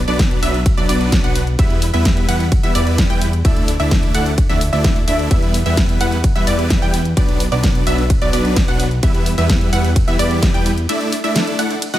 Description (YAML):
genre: EDM, festival progressive house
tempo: 129 BPM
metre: 4/4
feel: straight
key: E minor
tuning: A4 = 440 Hz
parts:
  - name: fat analog bass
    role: bass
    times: 0.0-10.9 s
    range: B1 to E2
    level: -20 LUFS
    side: equal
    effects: sidechain pumping
  - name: wide unison pluck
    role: arpeggios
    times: 0.1-12.0 s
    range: D5 to G5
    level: -24 LUFS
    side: right 2 dB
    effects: sidechain pumping, digital delay
  - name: supersaw chords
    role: riff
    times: 0.1-12.0 s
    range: F#3 to G5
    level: -20 LUFS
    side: equal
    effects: sidechain pumping, digital delay
  - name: pop drum kit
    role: drums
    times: 0.1-12.0 s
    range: hi-hat, ride cymbal, snare drum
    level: -23 LUFS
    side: equal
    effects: none
  - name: electronic kick drum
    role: drums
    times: 0.2-10.5 s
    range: none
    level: -16 LUFS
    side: equal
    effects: none
room: little or no reverb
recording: none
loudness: -13 LUFS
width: side -13 dB against mid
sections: 0.0-12.0 A section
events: break 10.9-12.0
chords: 0.0 Bm; 1.6 Em; 3.4 Dsus2; 5.3 Em; 7.2 Bm; 9.0 Em; 10.9 Dsus2